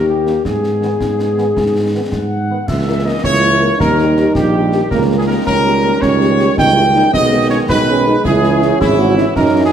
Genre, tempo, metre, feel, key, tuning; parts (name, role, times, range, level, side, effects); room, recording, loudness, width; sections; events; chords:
military-style march for wind band; 108 BPM (dotted quarters); 6/8; straight; G# minor; A4 = 440 Hz
mellow trumpet section; melody; 0.0-9.7 s; E4 to G5; -17 LUFS; equal
dark French horn section; accompaniment; 0.0-9.6 s; F#3 to A#4; -20 LUFS; left 4 dB
mellow tuba; bass; 0.0-9.7 s; G#1 to G#2; -17 LUFS; right 2 dB
dark trombone section; sustained chords; 0.3-9.7 s; D#3 to C#4; -22 LUFS; right 1 dB
concert snare drum, concert bass drum and clash cymbals; drums; 0.3-9.7 s; -23 LUFS; left 1 dB
warm euphonium; second line; 3.2-9.7 s; A#3 to G#4; -17 LUFS; right 4 dB
moderate recital hall reverb, RT60 1.6 s; -11 LUFS; side -8 dB against mid
0.0-2.7 A section; 2.7-9.7 B section
0.5 G#m; 2.7 A#dim/C#; 3.8 D#; 4.9 D#7/C#; 7.1 G#m/B; 8.2 C#m